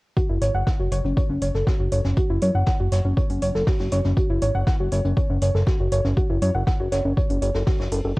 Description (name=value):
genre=melodic techno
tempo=120 BPM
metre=4/4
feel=straight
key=F# minor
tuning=A4 = 445 Hz
part: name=soft round pluck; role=arpeggios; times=0.2-8.2 s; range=C#4 to F#5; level=-25 LUFS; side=equal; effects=chorus, sidechain pumping, cassette tape, tape echo
part: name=electronic kick drum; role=drums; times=0.2-8.2 s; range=none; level=-22 LUFS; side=equal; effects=overdrive, cassette tape
part: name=jazz brush drum kit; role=drums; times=0.2-8.2 s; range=hi-hat, snare drum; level=-41 LUFS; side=left 1 dB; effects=sidechain pumping on hats, high-pass filter on hats, cassette tape, high-pass filter on snare, high-pass filter on room
part: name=fat analog bass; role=bass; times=0.3-8.1 s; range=F#1 to F#2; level=-22 LUFS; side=equal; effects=sidechain pumping
part: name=electronic hi-hat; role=drums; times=0.4-8.0 s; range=none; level=-38 LUFS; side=right 1 dB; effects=cassette tape
room=light reverb, studio reverb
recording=home recording on cassette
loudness=-19 LUFS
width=side -22 dB against mid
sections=0.2-8.2 A section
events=none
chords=0.2 F#5